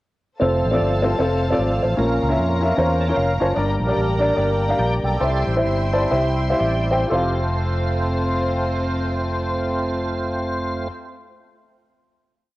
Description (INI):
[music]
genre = uptempo gospel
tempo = 113-153 BPM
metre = 4/4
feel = swing 60% on 8ths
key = F major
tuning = A4 = 440 Hz
[part]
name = warm grand piano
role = accompaniment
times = 0.4-10.9 s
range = F2 to Bb5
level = -22 LUFS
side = equal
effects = cassette tape
[part]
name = rich studio string section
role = sustained chords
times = 0.4-10.9 s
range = C4 to C6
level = -29 LUFS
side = equal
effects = cassette tape
[part]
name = tonewheel organ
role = sustained chords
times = 0.4-10.9 s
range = F3 to A5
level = -25 LUFS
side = right 1 dB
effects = fast rotary speaker, chorus vibrato, cassette tape
[part]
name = fingered electric bass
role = bass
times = 0.4-10.9 s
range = F1 to F2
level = -23 LUFS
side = equal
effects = none
[sound]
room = moderate lush hall reverb, RT60 2.3 s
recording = home recording on cassette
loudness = -18 LUFS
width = side -18 dB against mid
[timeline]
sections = 0.4-7.1 breakdown; 7.1-11.3 final chord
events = tonewheel organ fill 2.8-3.6; grand piano fill 3.0-3.6, 5.6-7.1; slowing down 3.6-7.1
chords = 0.4 F; 2.0 Bbm; 3.6 Gm; 5.2 C; 7.1 F